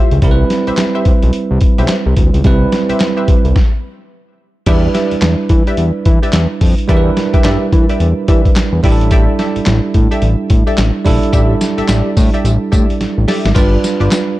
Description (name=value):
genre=R&B, new jack swing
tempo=108 BPM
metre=4/4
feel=swing 62% on 16ths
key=unclear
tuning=A4 = 441 Hz
part: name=bell-like tine electric piano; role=accompaniment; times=0.0-14.4 s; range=G3 to C5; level=-17 LUFS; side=right 4 dB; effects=none
part: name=funky polysynth comp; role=stabs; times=0.0-14.2 s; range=F4 to E5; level=-21 LUFS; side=left 1 dB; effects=chorus
part: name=fat analog bass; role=bass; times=0.1-14.1 s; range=G1 to E3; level=-14 LUFS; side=equal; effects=none
part: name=boom bap sampler-style drum kit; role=drums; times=0.1-14.3 s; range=crash cymbal, handclaps, hi-hat, kick drum, snare drum, tambourine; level=-13 LUFS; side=equal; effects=vintage 12-bit sampler grit
room=digital ambience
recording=dark, warm production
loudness=-10 LUFS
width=side -16 dB against mid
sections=0.0-4.7 A section; 4.7-13.6 B section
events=stop 3.6-4.7; drum fill 13.0-13.6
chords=0.2 Cmaj7; 4.7 Em7; 8.8 A7sus4; 13.6 G7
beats=| 0.22 0.78 1.33 1.89 | 2.45 3.00 3.56 4.11 | 4.67 5.22 5.78 6.33 | 6.89 7.45 8.00 8.56 | 9.11 9.67 10.22 10.78 | 11.34 11.89 12.45 13.00 | 13.56 14.11